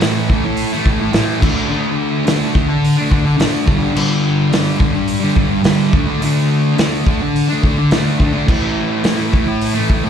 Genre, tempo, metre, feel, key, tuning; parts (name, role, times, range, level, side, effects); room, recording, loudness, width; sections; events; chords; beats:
garage rock duo or trio; 106 BPM; 4/4; straight; A4 = 438 Hz
thick fuzz guitar; riff; 0.0-10.1 s; G2 to D4; -15 LUFS; equal; distortion
vintage drum kit; drums; 0.0-10.0 s; crash cymbal, hi-hat, kick drum, snare drum; -17 LUFS; equal
little or no reverb; live gig heard through the venue's PA, club reverb; -13 LUFS; side -8 dB against mid
0.0-10.1 A section
0.0 A5; 1.4 D5; 3.7 G5; 5.9 D5; 8.5 A5
0.02 0.58 1.15 | 1.71 2.27 2.83 3.40 | 3.96 4.52 5.09 5.65 | 6.22 6.78 7.34 7.91 | 8.47 9.04 9.61